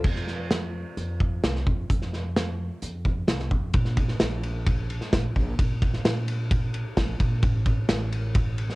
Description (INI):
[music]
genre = indie folk with a building arrangement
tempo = 130 BPM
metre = 4/4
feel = straight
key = unclear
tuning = A4 = 438 Hz
[part]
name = fingerpicked steel-string acoustic guitar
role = accompaniment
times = 0.0-1.9 s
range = F3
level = -38 LUFS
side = left 2 dB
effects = cassette tape
[part]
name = upright bass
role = bass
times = 0.0-8.7 s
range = A1 to F2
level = -28 LUFS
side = equal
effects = none
[part]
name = loose indie drum kit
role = drums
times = 0.0-8.8 s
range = crash cymbal, hi-hat, kick drum, ride cymbal, snare drum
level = -25 LUFS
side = equal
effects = none
[sound]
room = little or no reverb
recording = home recording on cassette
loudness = -23 LUFS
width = side -22 dB against mid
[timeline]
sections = 0.0-3.7 A section; 3.7-8.8 B section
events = none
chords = 0.0 F5; 3.7 N.C.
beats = | 0.05 0.51 0.97 1.43 | 1.90 2.36 2.82 3.28 | 3.75 4.21 4.67 5.13 | 5.59 6.05 6.51 6.97 | 7.43 7.89 8.35